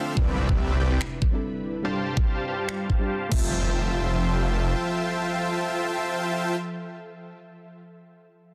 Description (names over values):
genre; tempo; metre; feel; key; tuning
future bass; 143 BPM; 4/4; swing 54% on 16ths, half-time; F lydian; A4 = 438 Hz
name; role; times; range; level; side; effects
soft round pluck; accompaniment; 0.0-6.6 s; G3 to E5; -36 LUFS; equal; subtle chorus, sidechain pumping, tape echo
ethereal airy pad; sustained chords; 0.0-6.6 s; C3 to E5; -38 LUFS; equal; ensemble chorus, built-in reverb, sidechain pumping
dense compressed supersaw; riff; 0.0-6.6 s; G3 to A5; -30 LUFS; equal; sidechain pumping, low-pass filter, tape echo
detuned saw bass; bass; 0.2-4.7 s; F1 to C2; -27 LUFS; equal; chorus, sidechain pumping
electronic kick drum; drums; 0.2-3.4 s; none; -26 LUFS; equal; none
impact; sound effects; 0.2-6.6 s; none; -37 LUFS; equal; none
pop drum kit; drums; 1.0-3.4 s; crash cymbal, finger snaps; -37 LUFS; equal; soft clipping on snare
room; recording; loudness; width
light reverb; dense, heavily limited modern master; -26 LUFS; mono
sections
0.2-3.5 A section; 3.5-6.9 B section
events
break 0.0; impact 0.2-1.8; filter sweep on ambient pad 0.2-3.5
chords
0.2 Cmaj9; 1.8 G9sus4; 3.3 Fmaj7